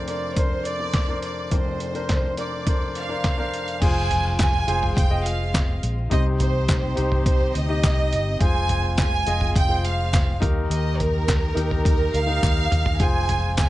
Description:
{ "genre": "piano-driven pop", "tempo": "104 BPM", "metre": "4/4", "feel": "straight", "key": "unclear", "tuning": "A4 = 439 Hz", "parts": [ { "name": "warm studio violin section", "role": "melody", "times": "0.0-13.7 s", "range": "Bb4 to Ab5", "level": "-26 LUFS", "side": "right 3 dB", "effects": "none" }, { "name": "warm concert grand piano", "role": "accompaniment", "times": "0.0-13.7 s", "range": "F1 to Eb5", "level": "-28 LUFS", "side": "left 3 dB", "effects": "none" }, { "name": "trip hop sampler-style drum kit", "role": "drums", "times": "0.1-13.7 s", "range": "crash cymbal, handclaps, hi-hat, kick drum, snare drum, toms", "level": "-22 LUFS", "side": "equal", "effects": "none" }, { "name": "warm studio string section", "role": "sustained chords", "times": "3.8-13.7 s", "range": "C3 to Bb4", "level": "-35 LUFS", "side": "left 1 dB", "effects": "none" }, { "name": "vintage muted fingered electric bass", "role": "bass", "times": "3.8-13.7 s", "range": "F1 to Eb2", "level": "-24 LUFS", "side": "equal", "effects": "none" }, { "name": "group handclap", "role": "percussion", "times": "4.4-13.7 s", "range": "none", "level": "-34 LUFS", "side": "left 3 dB", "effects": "none" } ], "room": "little or no reverb", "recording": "nothing above 10.9 kHz", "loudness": "-20 LUFS", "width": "side -16 dB against mid", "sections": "0.0-3.8 A section; 3.8-13.7 B section", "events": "drum fill 12.4-13.0", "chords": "0.0 Bbadd9/F; 3.8 Fm; 6.1 Cm; 8.4 Fm; 10.4 Eb; 13.0 Fm", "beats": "0.36 0.94 | 1.52 2.09 2.67 3.24 | 3.81 4.39 4.96 5.54 | 6.11 6.69 7.26 7.84 | 8.41 8.98 9.56 10.13 | 10.71 11.28 11.86 12.43 | 13.01 13.58" }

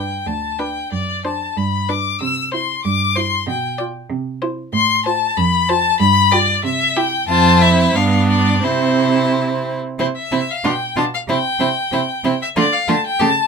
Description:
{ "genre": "quick classical-period movement for string quartet", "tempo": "94 BPM", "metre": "2/4", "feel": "rubato", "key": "G major, C major from 4.7 s", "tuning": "A4 = 440 Hz", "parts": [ { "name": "clear violin", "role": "melody", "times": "0.0-13.5 s", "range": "C5 to E6", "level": "-18 LUFS", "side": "left 6 dB", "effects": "none" }, { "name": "clear violin", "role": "second line", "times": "0.0-13.3 s", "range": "D4 to D5", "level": "-21 LUFS", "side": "left 2 dB", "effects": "none" }, { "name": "warm viola", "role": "accompaniment", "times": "0.0-13.3 s", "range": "A3 to F4", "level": "-22 LUFS", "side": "right 4 dB", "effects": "none" }, { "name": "warm cello", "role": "bass", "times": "0.0-13.3 s", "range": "D2 to D3", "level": "-20 LUFS", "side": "right 4 dB", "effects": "none" } ], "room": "light reverb", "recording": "minimal, uncompressed stereo recording", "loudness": "-15 LUFS", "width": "side -5 dB against mid", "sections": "0.0-10.0 A section; 10.0-13.5 B section", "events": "none", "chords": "0.0 G; 0.9 D7/F#; 1.6 G; 2.2 C; 3.5 G7/B; 4.1 C; 4.7 F/A; 5.4 F; 6.0 G7; 6.6 C; 7.3 F; 8.0 G7; 8.6 C; 10.7 G7; 11.3 C; 12.6 Dm", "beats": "0.27 | 0.92 1.57 | 2.21 2.85 | 3.48 4.10 | 4.74 5.37 | 6.00 6.64 | 7.29 7.95 | 8.63 9.31 | 9.99 10.65 | 11.29 11.93 | 12.57 13.21" }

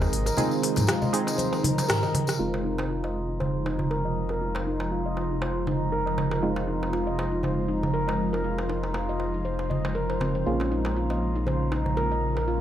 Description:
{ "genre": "afro house", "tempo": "119 BPM", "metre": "4/4", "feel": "swing 56% on 16ths", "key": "F minor", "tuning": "A4 = 440 Hz", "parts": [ { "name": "ethereal airy pad", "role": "sustained chords", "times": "0.0-12.6 s", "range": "C3 to Bb4", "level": "-32 LUFS", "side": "equal", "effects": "ensemble chorus, built-in reverb, phaser, vintage 12-bit sampler grit" }, { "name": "handpan", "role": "arpeggios", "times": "0.0-12.6 s", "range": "C4 to Eb5", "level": "-30 LUFS", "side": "left 1 dB", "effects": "low-pass filter, analog delay" }, { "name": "warm analog keys", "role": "stabs", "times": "0.0-12.6 s", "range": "Ab3 to Ab4", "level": "-32 LUFS", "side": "right 3 dB", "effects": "chorus, vintage 12-bit sampler grit, low-pass filter, analog delay" }, { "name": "warm sub bass", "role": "bass", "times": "0.0-12.6 s", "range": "F1 to Bb1", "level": "-31 LUFS", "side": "equal", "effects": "tube saturation" }, { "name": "darbuka", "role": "percussion", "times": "0.0-12.5 s", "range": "none", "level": "-32 LUFS", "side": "right 2 dB", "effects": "none" }, { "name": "tambourine", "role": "percussion", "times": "0.0-2.4 s", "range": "none", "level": "-38 LUFS", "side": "left 3 dB", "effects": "none" }, { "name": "afro-pop drum kit", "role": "drums", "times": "0.1-2.4 s", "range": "hi-hat, rim click, toms", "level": "-27 LUFS", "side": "left 1 dB", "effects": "none" }, { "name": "congas", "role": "percussion", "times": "0.4-2.3 s", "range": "none", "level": "-33 LUFS", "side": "left 2 dB", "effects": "none" } ], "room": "light reverb, small room reverb", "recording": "dry, gritty hardware recording", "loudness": "-24 LUFS", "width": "side -11 dB against mid", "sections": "0.0-2.4 A section; 2.4-12.6 B section", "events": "band accent 1.9; filter sweep on handpan 2.4-12.6", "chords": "0.0 Ab; 2.4 Fm7; 10.5 Bbm7", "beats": "| 0.38 0.88 1.39 1.89 | 2.40 2.90 3.40 3.91 | 4.41 4.92 5.42 5.92 | 6.43 6.93 7.44 7.94 | 8.45 8.95 9.45 9.96 | 10.46 10.97 11.47 11.97 | 12.48" }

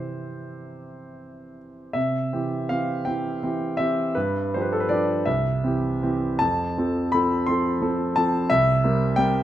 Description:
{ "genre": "classical, romantic character piece for solo piano", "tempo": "48-59 BPM (dotted quarters)", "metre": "6/8", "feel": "rubato", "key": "C major", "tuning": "A4 = 440 Hz", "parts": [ { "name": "clear concert grand piano", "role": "solo", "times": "0.0-9.4 s", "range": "C2 to C6", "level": "-22 LUFS", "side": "equal", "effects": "none" } ], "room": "moderate recital hall reverb, RT60 1.5 s", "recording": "close, detailed microphones, faint mains hum", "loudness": "-21 LUFS", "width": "side -12 dB against mid", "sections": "0.0-1.9 A section; 1.9-9.4 B section", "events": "none", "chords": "0.0 C; 4.1 G5; 5.3 C; 6.4 F; 8.5 C7", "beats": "0.75 | 1.95 3.06 | 4.15 5.26 | 6.40 7.45 | 8.50" }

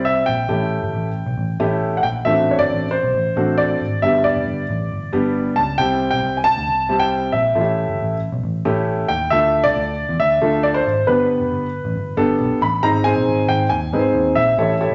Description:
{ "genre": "uptempo 1960s-style soul", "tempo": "136 BPM", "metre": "4/4", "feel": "straight", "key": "unclear", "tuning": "A4 = 440 Hz", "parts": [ { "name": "warm concert grand piano", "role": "melody", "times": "0.0-14.9 s", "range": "B4 to B5", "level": "-21 LUFS", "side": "equal", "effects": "none" }, { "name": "warm upright piano", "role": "accompaniment", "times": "0.0-14.9 s", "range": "G3 to C#5", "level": "-23 LUFS", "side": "equal", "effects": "none" }, { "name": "vintage muted picked electric bass", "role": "bass", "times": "0.0-14.9 s", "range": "F1 to Ab2", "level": "-26 LUFS", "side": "equal", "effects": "none" } ], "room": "wet large studio reverb, RT60 1.3 s", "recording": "nothing above 7.7 kHz", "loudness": "-19 LUFS", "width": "mono", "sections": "0.0-12.8 A section; 12.8-14.9 B section", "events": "none", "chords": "0.5 A7; 2.3 D7; 4.0 G; 5.8 C; 7.6 A7; 9.3 Dm; 11.1 G; 12.8 Ab", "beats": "0.06 | 0.50 0.94 1.38 1.82 | 2.26 2.70 3.14 3.58 | 4.03 4.47 4.91 5.35 | 5.79 6.23 6.67 7.12 | 7.56 8.00 8.44 8.88 | 9.32 9.76 10.20 10.64 | 11.08 11.52 11.95 12.39 | 12.83 13.27 13.71 14.14 | 14.58" }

